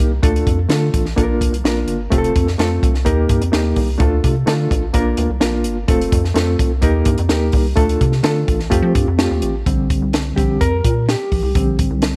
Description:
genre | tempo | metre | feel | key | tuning
uptempo 1960s-style soul | 127 BPM | 4/4 | straight | Bb major | A4 = 443 Hz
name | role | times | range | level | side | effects
bright reed electric piano | accompaniment | 0.0-12.2 s | D3 to Bb4 | -22 LUFS | equal | overdrive, fast tremolo
rubbery square bass | bass | 0.0-12.2 s | F1 to F3 | -21 LUFS | equal | none
compact cocktail drum kit | drums | 0.0-12.1 s | hi-hat, kick drum, snare drum | -21 LUFS | equal | none
room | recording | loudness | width
light reverb, studio ambience | none | -17 LUFS | mono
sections
0.0-9.7 A section; 9.7-12.2 B section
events
reed electric piano solo 9.7-12.2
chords
0.2 Dm; 1.2 Bb; 2.1 F; 3.1 Eb; 4.0 Dm; 4.9 Bb; 5.9 F; 6.8 Eb; 7.8 Dm; 8.7 Fadd9; 9.7 Bb6

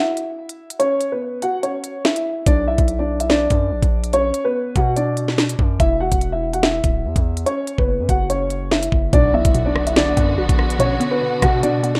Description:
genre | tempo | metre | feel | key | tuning
hip hop, drill | 144 BPM | 4/4 | half-time | B harmonic minor | A4 = 440 Hz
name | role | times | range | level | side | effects
dark grand piano | melody | 0.0-12.0 s | B3 to F#5 | -22 LUFS | equal | low-pass filter
drill drum kit | drums | 0.2-12.0 s | hi-hat, kick drum, rim click, snare drum | -21 LUFS | equal | none
distorted 808-style bass | bass | 2.5-12.0 s | D1 to B2 | -25 LUFS | equal | distortion
hollow square pluck | accompaniment | 9.1-12.0 s | B2 to F#4 | -27 LUFS | equal | chorus, low-pass filter
warm studio string section | sustained chords | 9.1-12.0 s | D3 to F#4 | -28 LUFS | equal | none
impact | sound effects | 9.3-10.8 s | none | -34 LUFS | equal | none
room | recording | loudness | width
moderate digital room reverb, RT60 1.1 s | rough home demo mix | -19 LUFS | mono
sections
0.0-9.1 A section; 9.1-12.0 B section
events
break 0.0-2.5; impact 9.1-10.8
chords
0.0 N.C.; 2.5 Bm; 5.8 Esus2; 7.5 F#5; 9.1 Bm

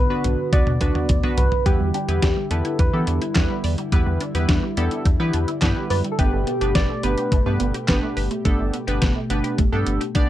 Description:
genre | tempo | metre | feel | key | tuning
synth-pop | 106 BPM | 4/4 | straight | E minor | A4 = 440 Hz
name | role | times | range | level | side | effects
soft struck synth lead | melody | 0.0-8.2 s | G4 to D5 | -26 LUFS | left 1 dB | chorus, phaser
chorused pulse-width pad | sustained chords | 0.0-10.3 s | B2 to G4 | -29 LUFS | equal | none
round analog bass | bass | 0.0-10.3 s | G1 to E3 | -23 LUFS | equal | none
funky polysynth comp | accompaniment | 0.1-10.3 s | B3 to D5 | -26 LUFS | right 1 dB | chorus
detuned 8-bit digital drum machine | drums | 0.2-10.3 s | handclaps, hi-hat, kick drum, snare drum, toms | -21 LUFS | equal | none
resonant blip pluck | arpeggios | 1.7-10.2 s | G3 to D5 | -30 LUFS | right 1 dB | chorus, phaser, ping-pong delay
room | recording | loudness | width
light reverb | dark, warm production | -18 LUFS | side -13 dB against mid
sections
0.0-1.7 A section; 1.7-10.3 B section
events
drum fill 0.0-1.7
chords
0.0 Bm; 1.7 Em7; 6.2 Gadd9

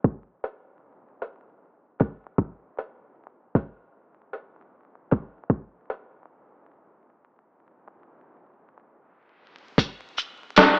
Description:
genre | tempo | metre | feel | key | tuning
hip hop | 77 BPM | 4/4 | swing 57% on 16ths | none | none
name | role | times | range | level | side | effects
lo-fi sampler-style drum kit | drums | 0.0-10.8 s | finger snaps, hi-hat, kick drum, shaker, snare drum | -17 LUFS | equal | cassette tape
room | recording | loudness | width
wet spring reverb, RT60 2.7 s | home recording on cassette, vinyl crackle, low-pass filter, small speaker sound | -25 LUFS | side -38 dB against mid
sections
0.0-9.8 A section; 9.8-10.8 B section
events
filter sweep 0.0-9.8; break 6.7-9.8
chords
none

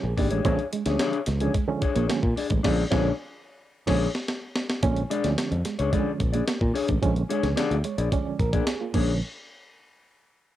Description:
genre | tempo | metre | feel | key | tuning
funk | 110 BPM | 4/4 | straight | Bb mixolydian | A4 = 440 Hz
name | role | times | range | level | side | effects
mellow electric guitar | accompaniment | 0.0-9.1 s | D4 to D5 | -28 LUFS | left 6 dB | cassette tape
reed electric piano | stabs | 0.0-9.2 s | D3 to D5 | -30 LUFS | right 6 dB | overdrive, fast tremolo, cassette tape
fingered electric bass | bass | 0.0-9.2 s | Ab1 to Bb2 | -26 LUFS | equal | none
semi-hollow electric guitar | riff | 0.2-9.1 s | Ab3 to Bb3 | -31 LUFS | right 6 dB | analog chorus, cassette tape
breakbeat sampler-style drum kit | drums | 0.2-9.1 s | crash cymbal, hi-hat, kick drum, snare drum | -28 LUFS | equal | cassette tape
room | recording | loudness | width
little or no reverb | home recording on cassette | -23 LUFS | side -13 dB against mid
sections
0.0-4.8 A section; 4.8-9.2 B section; 9.2-10.6 C section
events
reed electric piano fill 0.0-0.5, 7.6-9.2; band accent 2.6-4.8; drum fill 3.7-4.8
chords
0.0 Bb7#9; 9.2 N.C.

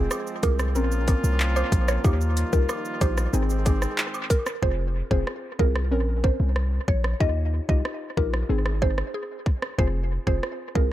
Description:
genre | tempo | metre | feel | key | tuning
dancehall | 93 BPM | 4/4 | straight | F minor | A4 = 440 Hz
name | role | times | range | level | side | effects
mallet-like synth pluck | melody | 0.0-10.9 s | Ab4 to Eb5 | -31 LUFS | right 2 dB | chorus, phaser, dub echo
soft round pluck | accompaniment | 0.0-10.9 s | C4 to Bb4 | -31 LUFS | left 2 dB | chorus, dub echo
mellow brass ensemble | sustained chords | 0.0-4.6 s | Eb3 to F4 | -32 LUFS | right 1 dB | sidechain pumping
hard-hitting 808-style bass | bass | 0.0-10.9 s | F1 to Eb2 | -24 LUFS | equal | none
island pop drum kit | drums | 0.1-10.9 s | handclaps, hi-hat, kick drum, rim click, shaker | -26 LUFS | equal | dub echo
woodblock and cabasa | percussion | 0.1-4.5 s | none | -39 LUFS | right 2 dB | dub echo
room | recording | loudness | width
digital ambience | echo-heavy mix | -22 LUFS | side -14 dB against mid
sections
0.0-4.6 A section; 4.6-10.9 B section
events
hi-hats muted 4.6-10.9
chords
0.0 Fm; 0.8 Bbmadd9; 2.0 Ebadd9; 3.3 Ab; 4.6 Fm; 5.9 Bbmadd9; 7.2 Ebadd9; 8.5 Ab; 9.8 Fm

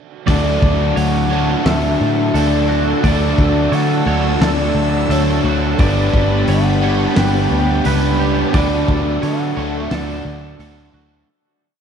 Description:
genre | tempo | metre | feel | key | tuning
rock, shoegaze and dream pop | 87 BPM | 4/4 | straight | D major | A4 = 440 Hz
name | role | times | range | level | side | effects
breathy flute-like synth lead | melody | 0.3-11.0 s | C#5 to B5 | -23 LUFS | equal | chorus, diffuse ambient delay
sweeping resonant pad | sustained chords | 0.3-11.3 s | G4 to E6 | -27 LUFS | equal | chorus
twangy electric guitar | arpeggios | 0.3-11.3 s | F#4 to D5 | -28 LUFS | right 4 dB | analog chorus, diffuse ambient delay
crunchy overdriven guitar | riff | 0.3-11.3 s | D3 to B4 | -21 LUFS | right 5 dB | reverse reverb
overdriven electric guitar | riff | 0.3-11.3 s | G2 to D4 | -23 LUFS | left 1 dB | none
overdriven semi-hollow guitar | riff | 0.3-11.3 s | G2 to D4 | -23 LUFS | left 7 dB | wide subtle chorus
picked electric bass | bass | 0.3-11.2 s | G1 to D3 | -19 LUFS | equal | none
loose indie drum kit | drums | 0.3-10.8 s | hi-hat, kick drum, snare drum | -21 LUFS | equal | none
room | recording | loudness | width
wet cathedral reverb, RT60 6.4 s | dreamy mix soaked in reverb | -13 LUFS | side -7 dB against mid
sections
0.3-11.3 A section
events
fade-out 8.5-11.3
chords
0.3 Dmaj7; 5.8 Gmaj7; 8.5 Dmaj7

